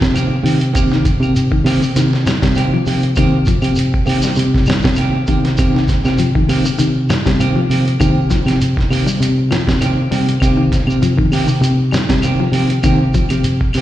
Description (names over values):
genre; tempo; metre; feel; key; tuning
afrobeat; 99 BPM; 4/4; swing 54% on 16ths; C minor; A4 = 440 Hz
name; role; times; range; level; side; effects
semi-hollow electric guitar; arpeggios; 0.0-13.3 s; C3 to G3; -20 LUFS; left 3 dB; slapback echo
clean electric guitar; stabs; 0.0-13.8 s; Eb3 to G4; -22 LUFS; right 5 dB; harmonic tremolo, tape echo, slapback echo
fingered electric bass; bass; 0.0-13.8 s; C3; -15 LUFS; equal; none
lo-fi sampler-style drum kit; drums; 0.0-13.8 s; hi-hat, kick drum, snare drum; -18 LUFS; equal; none
shekere; percussion; 0.0-13.8 s; none; -25 LUFS; right 1 dB; slapback echo
claves; percussion; 0.2-13.8 s; none; -32 LUFS; left 2 dB; none
room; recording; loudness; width
light reverb; live gig heard through the venue's PA, recital hall reverb; -12 LUFS; side -13 dB against mid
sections
0.0-13.8 A section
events
none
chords
0.0 Cm7